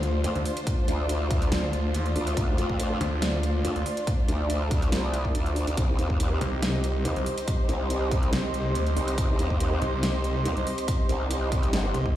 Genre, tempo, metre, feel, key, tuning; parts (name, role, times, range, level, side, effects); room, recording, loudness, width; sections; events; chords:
heavy wobble dubstep; 141 BPM; 4/4; half-time; D phrygian; A4 = 443 Hz
warm symphonic string section; sustained chords; 0.0-12.2 s; G3 to C5; -33 LUFS; left 1 dB; sidechain pumping
snarling distorted saw bass; bass; 0.0-3.8, 6.4-12.1 s; C2 to Eb2; -27 LUFS; equal; distortion, overdrive
dubstep drum kit; drums; 0.0-12.0 s; hi-hat, snare drum; -33 LUFS; equal
airy breathy pad; texture; 0.0-12.2 s; F4 to C6; -33 LUFS; right 1 dB; chorus, sidechain pumping
growl bass; bass; 0.2-11.9 s; G1 to F2; -27 LUFS; equal; chorus, overdrive
electronic kick drum; drums; 0.7-12.1 s; -26 LUFS; equal
little or no reverb; played on a big sound system in a bare room, stone room reverb; -24 LUFS; side -12 dB against mid
0.0-12.2 A section
0.0 Dm7; 5.8 Cm